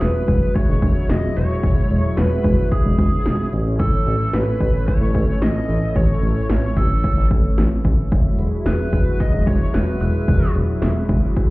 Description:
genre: synth-pop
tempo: 111 BPM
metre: 4/4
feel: straight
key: unclear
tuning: A4 = 440 Hz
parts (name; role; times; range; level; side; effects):
- nasal lead guitar with a parked wah; melody; 0.0-10.5 s; G#4 to D#5; -27 LUFS; right 1 dB; overdrive, tape echo
- lush unison pad; sustained chords; 0.0-11.5 s; E3 to E4; -25 LUFS; equal; chorus
- smooth synth bass; bass; 0.0-11.2 s; E1 to A1; -20 LUFS; equal; none
- punchy analog drum machine; drums; 0.0-11.5 s; hi-hat, kick drum, snare drum; -19 LUFS; equal; overdrive
room: light reverb, digital ambience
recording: heard muffled through a wall, club reverb, EQ, nothing above 7.5 kHz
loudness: -16 LUFS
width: side -20 dB against mid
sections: 0.0-11.5 A section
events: none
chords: 0.0 Eadd9; 3.5 A; 8.1 Eadd9

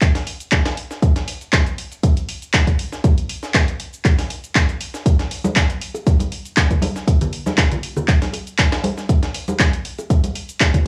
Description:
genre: house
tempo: 119 BPM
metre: 4/4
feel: swing 53% on 16ths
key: none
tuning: none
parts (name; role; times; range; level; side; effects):
- breakbeat sampler-style drum kit; drums; 0.0-10.7 s; hi-hat, snare drum; -30 LUFS; equal; high-pass filter on hats, high-pass filter on snare
- deep house drum kit; drums; 0.0-10.8 s; handclaps, hi-hat, shaker; -24 LUFS; equal; none
- electronic kick drum; drums; 0.0-10.8 s; none; -19 LUFS; equal; overdrive
- congas and bongos; percussion; 5.4-10.8 s; none; -26 LUFS; equal; none
room: little or no reverb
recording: home recording on cassette, studio reverb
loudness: -19 LUFS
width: mono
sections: 0.0-10.9 A section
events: none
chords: none

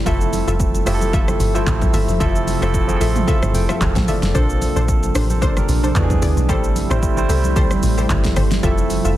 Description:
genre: amapiano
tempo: 112 BPM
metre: 4/4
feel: swing 55% on 16ths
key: F major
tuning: A4 = 440 Hz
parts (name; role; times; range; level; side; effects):
- barky tine electric piano; accompaniment; 0.0-9.2 s; E3 to C6; -23 LUFS; right 4 dB; none
- ethereal airy pad; sustained chords; 0.0-9.2 s; C3 to E5; -26 LUFS; left 1 dB; ensemble chorus, built-in reverb, sidechain pumping
- deep log drum bass; bass; 0.0-9.2 s; F1 to E2; -20 LUFS; equal; none
- punchy chord stab; stabs; 0.1-9.2 s; D4 to E5; -26 LUFS; left 3 dB; chorus, tape echo
- deep house drum kit; drums; 0.1-9.2 s; handclaps, hi-hat, kick drum, rim click, shaker, snare drum, toms; -20 LUFS; equal; overdrive
- congas; percussion; 0.1-9.0 s; none; -28 LUFS; left 2 dB; none
room: digital ambience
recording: dense, heavily limited modern master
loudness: -15 LUFS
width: side -14 dB against mid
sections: 0.0-9.2 A section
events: tine electric piano fill 2.7-4.3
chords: 0.1 Fmaj7; 4.3 Bbmaj9; 6.0 E7; 6.5 Am7; 8.6 Fmaj7

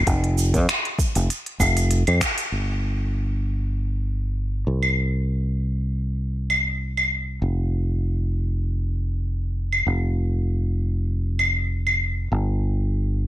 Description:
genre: sunset chillout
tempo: 98 BPM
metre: 4/4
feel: swing 54% on 16ths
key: unclear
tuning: A4 = 442 Hz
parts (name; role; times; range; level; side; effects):
- fingered electric bass; bass; 0.0-13.3 s; F1 to F2; -22 LUFS; equal; tube saturation
- electronic kick drum; drums; 0.1-2.3 s; none; -24 LUFS; equal; none
- smooth R&B drum kit; drums; 0.1-12.0 s; claves, finger snaps, hi-hat, shaker; -23 LUFS; equal; none
room: little or no reverb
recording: none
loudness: -21 LUFS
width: side -14 dB against mid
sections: 0.0-2.5 A section; 2.5-13.3 B section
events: band accent 2.2-2.5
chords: none

